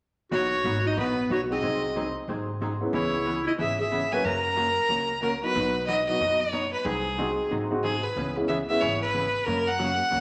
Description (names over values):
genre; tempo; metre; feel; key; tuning
country, western swing; 184 BPM; 4/4; swing 63% on 8ths; B major; A4 = 441 Hz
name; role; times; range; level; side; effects
clear fiddle; melody; 0.3-10.2 s; G#4 to A#5; -29 LUFS; equal; none
growling clarinet; second line; 0.3-5.2 s; B3 to B4; -31 LUFS; equal; none
hollow-body jazz guitar; accompaniment; 0.3-10.2 s; B2 to B#4; -35 LUFS; equal; none
upright bass; bass; 0.3-10.2 s; G#1 to G#2; -38 LUFS; equal; none
warm upright piano; accompaniment; 1.5-10.0 s; F#3 to F#4; -33 LUFS; equal; none
room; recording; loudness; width
wet large studio reverb, RT60 1.2 s; none; -26 LUFS; mono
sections
0.3-5.5 A section; 5.5-10.2 B section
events
none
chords
0.3 B; 1.6 G#7/B#; 2.9 C#m7; 4.2 F#; 5.5 B; 6.9 G#7/B#; 8.2 C#m7; 9.5 F#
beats
| 0.32 0.64 0.97 1.30 | 1.62 1.95 2.28 2.61 | 2.93 3.26 3.59 3.92 | 4.24 4.57 4.89 5.22 | 5.55 5.88 6.20 6.53 | 6.86 7.18 7.51 7.83 | 8.16 8.49 8.81 9.14 | 9.47 9.79 10.12